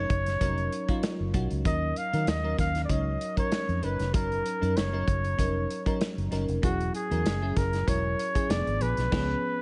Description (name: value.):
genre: polished 1980s jazz-funk pop.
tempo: 96 BPM.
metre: 4/4.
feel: swing 54% on 16ths.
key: unclear.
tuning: A4 = 440 Hz.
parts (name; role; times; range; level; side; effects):
breathy flugelhorn; melody; 0.0-9.6 s; F#4 to E#5; -34 LUFS; equal; none.
bell-like FM electric piano; accompaniment; 0.0-9.6 s; F3 to C#5; -35 LUFS; equal; analog chorus.
vintage muted fingered electric bass; bass; 0.0-9.3 s; E1 to D#3; -32 LUFS; equal; none.
modern studio drum kit; drums; 0.1-9.3 s; crash cymbal, hi-hat, kick drum, snare drum; -33 LUFS; equal; none.
room: small room ambience.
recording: nothing above 10.6 kHz.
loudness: -28 LUFS.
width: mono.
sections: 0.0-9.6 A section.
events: band accent 9.1-9.6.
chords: 0.0 F#6; 1.7 D#m7; 6.6 E69; 8.5 Fdim7.